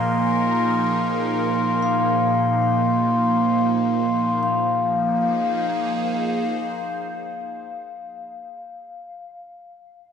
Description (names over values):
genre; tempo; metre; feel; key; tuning
ambient; free time; none; none; unclear; A4 = 440 Hz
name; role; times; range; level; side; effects
evolving wavetable pad; sustained chords; 0.0-8.1 s; Bb2 to C5; -22 LUFS; right 2 dB; phaser, built-in reverb
vibraphone with medium mallets; arpeggios; 0.0-10.1 s; F5 to Bb5; -25 LUFS; left 4 dB; dub echo
glass harmonica; texture; 0.0-4.5 s; C6; -26 LUFS; left 2 dB; none
room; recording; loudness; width
wet spring reverb, RT60 2.6 s; echo-heavy mix; -19 LUFS; side -7 dB against mid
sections
0.0-4.4 A section; 4.4-8.5 B section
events
none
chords
0.0 Fm/Bb; 4.4 Bb5